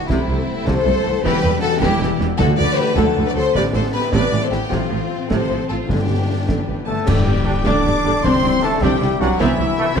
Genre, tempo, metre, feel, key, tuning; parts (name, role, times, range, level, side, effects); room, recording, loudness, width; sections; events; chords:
cinematic, heroic adventure film score; 104 BPM (dotted quarters); 6/8; straight; G major; A4 = 439 Hz
rich studio violin section; second line; 0.0-10.0 s; E4 to D6; -23 LUFS; left 3 dB
warm symphonic viola section; accompaniment; 0.0-10.0 s; C3 to A4; -24 LUFS; right 1 dB
concert harp; arpeggios; 0.0-10.0 s; G2 to B5; -27 LUFS; left 9 dB
rich symphonic violin section; melody; 0.1-10.0 s; C4 to D6; -28 LUFS; left 3 dB
rich symphonic cello section; bass; 0.1-10.0 s; C2 to A2; -26 LUFS; right 4 dB
rich symphonic double bass section; bass; 0.1-10.0 s; E1 to D2; -24 LUFS; right 4 dB
concert snare drum, concert bass drum and clash cymbals; drums; 0.1-10.0 s; -26 LUFS; equal
timpani; percussion; 2.4-2.9, 5.9-7.6 s; G2 to D3; -24 LUFS; equal
cymbal swell, clash cymbals and concert bass drum; percussion; 4.7-7.8 s; -27 LUFS; equal
large flute ensemble; second line; 6.9-10.0 s; E5 to D6; -26 LUFS; equal
mellow clarinet; second line; 6.9-10.0 s; E4 to D5; -28 LUFS; left 2 dB
mellow oboe; second line; 6.9-10.0 s; E4 to D5; -27 LUFS; right 1 dB
warm French horn section; sustained chords; 6.9-10.0 s; E3 to D4; -21 LUFS; left 4 dB
clear trombone section; sustained chords; 7.5-9.9 s; E3 to D4; -28 LUFS; right 4 dB
moderate scoring stage reverb, RT60 1.7 s; dark, warm production; -15 LUFS; side -6 dB against mid
0.0-7.1 A section; 7.1-10.0 B section
band accent 7.1-7.5
0.1 Amadd9/C; 1.2 Em; 2.4 D; 3.6 Amadd9; 4.7 F/A; 5.9 G; 7.1 Gsus2; 8.2 Cadd9; 9.4 Amadd9/C